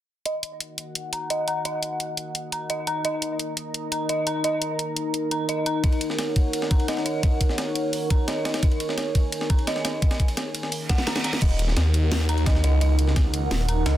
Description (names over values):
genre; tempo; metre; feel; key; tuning
dark technical drum and bass; 172 BPM; 4/4; straight; Eb minor; A4 = 440 Hz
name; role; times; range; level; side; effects
dark analog pad; sustained chords; 0.8-14.0 s; Eb4 to Bb5; -29 LUFS; equal; chorus, sidechain pumping
dark detuned synth bell; arpeggios; 0.3-14.0 s; Eb5 to Bb5; -30 LUFS; right 1 dB; chorus, sidechain pumping, low-pass filter, dub echo
drum and bass drum kit; drums; 0.3-13.9 s; crash cymbal, hi-hat, snare drum; -28 LUFS; equal; none
breakbeat sampler-style drum kit; drums; 5.8-13.9 s; hi-hat, ride cymbal, snare drum; -32 LUFS; equal; high-pass filter on cymbals, high-pass filter on snare, high-pass filter on hats
electronic kick drum; drums; 5.8-13.2 s; none; -20 LUFS; equal; none
reverse cymbal; sound effects; 10.8-11.4 s; none; -32 LUFS; right 3 dB; none
phased detuned saw bass; bass; 11.4-14.0 s; Eb1 to Eb2; -21 LUFS; equal; phaser, tube saturation, sidechain pumping
ethereal airy pad; texture; 12.3-14.0 s; Eb4 to Gb5; -31 LUFS; right 4 dB; ensemble chorus, built-in reverb, sidechain pumping
room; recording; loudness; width
little or no reverb; dense, heavily limited modern master; -22 LUFS; side -13 dB against mid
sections
0.3-11.4 A section; 11.4-14.0 B section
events
filter sweep on synth bell 0.3-11.4; reverse cymbal 10.8-11.4; drum fill 10.9-11.4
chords
0.3 Ebm